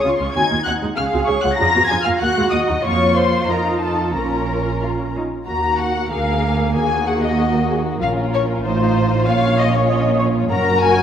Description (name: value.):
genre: quick classical-period movement for string orchestra.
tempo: 96 BPM.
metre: 2/4.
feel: straight.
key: Bb minor, Eb minor from 5.5 s.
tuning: A4 = 440 Hz.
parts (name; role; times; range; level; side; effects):
muted studio violin section; melody; 0.0-11.0 s; C5 to Bb6; -21 LUFS; left 4 dB; none.
muted studio violin section; second line; 0.0-11.0 s; Bb3 to Bb5; -22 LUFS; left 2 dB; none.
muted studio cello section; bass; 0.0-11.0 s; D2 to Ab4; -24 LUFS; right 3 dB; none.
muted symphonic viola section; accompaniment; 0.1-11.0 s; Gb3 to Eb5; -23 LUFS; equal; none.
muted chamber double bass section; bass; 0.1-11.0 s; Gb1 to F2; -22 LUFS; right 3 dB; none.
room: wet concert hall reverb, RT60 1.8 s.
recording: none.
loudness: -16 LUFS.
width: side -9 dB against mid.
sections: 0.0-5.5 A section; 5.5-11.0 B section.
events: none.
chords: 0.4 Ab7(no3)/Eb; 1.0 Db; 1.6 Bb7(no3)/F; 2.2 Ebm; 2.9 Bbm/F; 3.5 F7; 4.2 Bbm; 5.5 Ebm; 6.1 Bb7/D; 6.8 Ebm; 8.0 Bbm; 8.6 F7/A; 9.3 Bbm; 10.5 Gb.